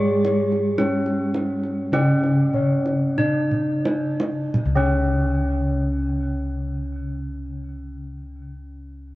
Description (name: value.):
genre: Javanese gamelan.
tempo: 42-58 BPM.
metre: 4/4.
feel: straight.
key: unclear.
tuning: A4 = 440 Hz.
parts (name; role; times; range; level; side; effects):
gamelan-type bronze metallophone; melody; 0.0-8.5 s; C#4 to G#4-40c; -24 LUFS; right 1 dB; tape echo.
gamelan-type bronze metallophone; accompaniment; 0.0-8.5 s; C#3 to G#3-40c; -27 LUFS; equal; none.
gamelan-type bossed gongs; arpeggios; 0.0-8.5 s; C#5 to D5+50c; -29 LUFS; left 2 dB; none.
gamelan-type bossed gongs; bass; 0.0-8.4 s; C#2 to G#4-40c; -25 LUFS; left 1 dB; none.
kendang; percussion; 0.2-5.2 s; none; -27 LUFS; right 2 dB; none.
room: light reverb.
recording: worn, warbling old tape, cassette tape, warbly pitch drift.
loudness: -19 LUFS.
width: side -17 dB against mid.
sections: 0.0-4.6 A section; 4.6-9.2 B section.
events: slowing down 0.0-4.6; drum fill 3.5-4.6.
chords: none.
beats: 0.79 1.94 3.18 | 4.55 5.99 7.42.